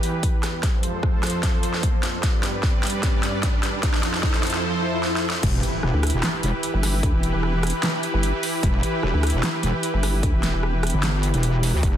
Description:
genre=heavy wobble dubstep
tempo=150 BPM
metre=4/4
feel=swing 53% on 16ths, half-time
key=E phrygian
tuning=A4 = 440 Hz
part: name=supersaw pad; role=sustained chords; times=0.0-12.0 s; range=E2 to D5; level=-26 LUFS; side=right 1 dB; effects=sidechain pumping
part: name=big-room dance drum kit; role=drums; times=0.0-11.9 s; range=crash cymbal, handclaps, hi-hat, rim click, snare drum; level=-27 LUFS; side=equal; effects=overdrive, high-pass filter on snare, high-pass filter on hats, high-pass filter on cymbals
part: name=riser, swell and impact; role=sound effects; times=0.8-7.0 s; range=none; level=-31 LUFS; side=left 1 dB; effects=none
part: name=electronic kick drum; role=drums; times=0.2-11.9 s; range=none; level=-22 LUFS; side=equal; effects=overdrive
part: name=wobble bass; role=bass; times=5.4-12.0 s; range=E1 to D2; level=-22 LUFS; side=equal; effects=chorus, overdrive
part: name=vowel-sweep wobble bass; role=bass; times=5.9-10.9 s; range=E1 to D2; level=-22 LUFS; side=equal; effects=chorus, overdrive
room=little or no reverb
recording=dense, heavily limited modern master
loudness=-20 LUFS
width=side -10 dB against mid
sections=0.0-5.4 A section; 5.4-12.0 B section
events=build-up 0.0-5.4; drum fill 0.0-4.6, 5.0-5.4; riser 0.8-4.6; swell 4.6-5.4; drop 5.4-12.0; impact 5.4-7.0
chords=0.0 Em; 0.6 F; 2.2 G; 3.8 F; 5.4 Em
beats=0.23 | 0.63 1.03 1.43 1.83 | 2.23 2.63 3.03 3.43 | 3.83 4.23 4.63 5.03 | 5.43 5.83 6.23 6.63 | 7.03 7.43 7.83 8.23 | 8.63 9.03 9.43 9.83 | 10.23 10.63 11.03 11.43 | 11.83

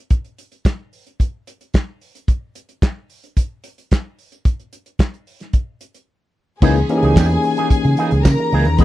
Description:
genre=disco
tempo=110 BPM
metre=4/4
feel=straight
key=C# dorian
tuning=A4 = 441 Hz
part: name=warm soul drum kit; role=drums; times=0.1-8.8 s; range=crash cymbal, handclaps, hi-hat, kick drum, snare drum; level=-15 LUFS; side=equal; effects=none
part: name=dark studio string section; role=second line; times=6.6-8.8 s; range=G#4 to B5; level=-22 LUFS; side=left 2 dB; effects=none
part: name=electric guitar with an envelope filter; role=accompaniment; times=6.6-8.8 s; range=E3 to G#4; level=-24 LUFS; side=right 7 dB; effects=none
part: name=tine electric piano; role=accompaniment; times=6.6-8.8 s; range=E3 to G#4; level=-18 LUFS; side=moving between left 6 dB and right 1 dB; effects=auto-pan
part: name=fingered electric bass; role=bass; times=6.6-8.8 s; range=C#2 to C#3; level=-16 LUFS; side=equal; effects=none
part: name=tambourine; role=percussion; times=7.2-8.4 s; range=none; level=-35 LUFS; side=right 18 dB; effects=none
room=little or no reverb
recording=none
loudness=-16 LUFS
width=side -15 dB against mid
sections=0.0-6.6 A section; 6.6-8.8 B section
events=break 6.1-6.6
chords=0.0 N.C.; 6.6 C#m69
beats=| 0.10 0.65 1.19 1.73 | 2.28 2.82 3.37 3.91 | 4.45 5.00 5.54 6.08 | 6.62 7.17 7.71 8.25 | 8.79

